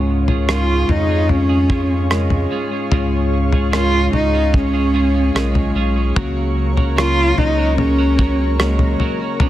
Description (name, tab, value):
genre	pop ballad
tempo	74 BPM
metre	4/4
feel	straight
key	F# major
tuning	A4 = 437 Hz
part	bell-like tine electric piano	accompaniment	0.0-9.5 s	G#2 to G#4	-23 LUFS	left 4 dB	none
part	ethereal airy pad	sustained chords	0.0-9.5 s	G#4 to C#6	-26 LUFS	left 1 dB	ensemble chorus, built-in reverb
part	twelve-string electric guitar	arpeggios	0.0-9.5 s	B2 to C#5	-26 LUFS	right 6 dB	tape echo
part	saturated sub bass	bass	0.0-9.5 s	B1 to E#2	-18 LUFS	equal	none
part	damped 70s drum kit	drums	0.3-9.5 s	kick drum, rim click, toms	-19 LUFS	equal	soft clipping on snare
part	dark cello	melody	0.5-9.2 s	G#3 to E#4	-19 LUFS	right 1 dB	none
room	light reverb, studio reverb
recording	dense, heavily limited modern master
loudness	-14 LUFS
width	side -13 dB against mid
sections	0.0-9.5 A section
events	none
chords	0.0 C#; 6.2 F#/C#